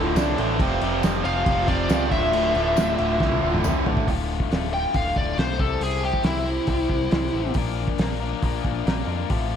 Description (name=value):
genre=classic rock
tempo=138 BPM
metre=4/4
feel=straight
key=D minor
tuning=A4 = 441 Hz
part: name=biting overdriven guitar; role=riff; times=0.0-9.6 s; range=D2 to C5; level=-28 LUFS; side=left 10 dB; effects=slapback echo
part: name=biting overdriven guitar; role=riff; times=0.0-3.9 s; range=D2 to F4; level=-31 LUFS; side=right 1 dB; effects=none
part: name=tight distorted guitar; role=riff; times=0.0-4.1 s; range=D2 to F3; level=-27 LUFS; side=right 12 dB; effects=distortion, slapback echo
part: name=deep dub picked electric bass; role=bass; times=0.0-9.6 s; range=D1 to F2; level=-28 LUFS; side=equal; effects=none
part: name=cloth-damped thuddy drum kit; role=drums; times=0.2-9.4 s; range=crash cymbal, hi-hat, kick drum, snare drum, toms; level=-26 LUFS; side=equal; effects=none
part: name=tambourine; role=percussion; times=0.2-3.7 s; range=none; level=-42 LUFS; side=left 16 dB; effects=none
part: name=biting lead guitar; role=second line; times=1.2-3.6 s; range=F4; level=-32 LUFS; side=equal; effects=overdrive, slapback echo
part: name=smooth overdriven lead guitar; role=melody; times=1.3-7.5 s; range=E4 to G5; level=-25 LUFS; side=left 1 dB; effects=slapback echo
room=light reverb, small room ambience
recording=none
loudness=-20 LUFS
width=side -8 dB against mid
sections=0.0-4.1 A section; 4.1-9.6 B section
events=drum fill 3.2-4.1; lead electric guitar solo 4.1-9.6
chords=0.0 Dsus2; 0.6 Fsus2; 2.1 Dmadd9; 4.1 Dm; 5.6 C; 7.6 Bb